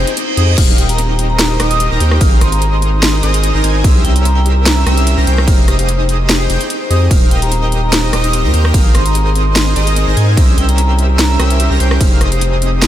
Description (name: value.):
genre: future bass.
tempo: 147 BPM.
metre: 4/4.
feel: swing 54% on 16ths, half-time.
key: Eb major.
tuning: A4 = 440 Hz.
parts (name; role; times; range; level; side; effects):
vibraphone with medium hard mallets; melody; 0.0-12.5 s; C5 to Eb6; -22 LUFS; equal; sidechain pumping, tape echo.
Celtic harp; arpeggios; 0.0-12.9 s; C4 to Ab4; -26 LUFS; left 7 dB; sidechain pumping, tape echo.
airy dreamy lead; arpeggios; 0.0-12.9 s; Eb6 to Bb6; -25 LUFS; equal; chorus, sidechain pumping.
soft supersaw; riff; 0.0-12.9 s; Db4 to Bb5; -19 LUFS; right 1 dB; sidechain pumping, tape echo.
saturated sub bass; bass; 0.0-12.9 s; Eb1 to Ab2; -13 LUFS; equal; tube saturation, sidechain pumping.
reverse cymbal; sound effects; 0.0-0.6 s; none; -25 LUFS; right 6 dB; none.
trap drum kit; drums; 0.1-12.9 s; crash cymbal, hi-hat, rim click, snare drum; -18 LUFS; equal; overdrive.
electronic kick drum; drums; 0.6-12.1 s; none; -10 LUFS; equal; none.
room: light reverb.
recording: none.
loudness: -10 LUFS.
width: side -12 dB against mid.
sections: 0.0-12.9 A section.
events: reverse cymbal 0.0-0.6.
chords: 0.0 Fm9; 0.6 Eb69; 2.2 Ab69; 3.8 C7b9; 5.5 Fm9; 7.1 Eb69; 8.7 Ab69; 10.4 C7b9; 12.0 Fm9.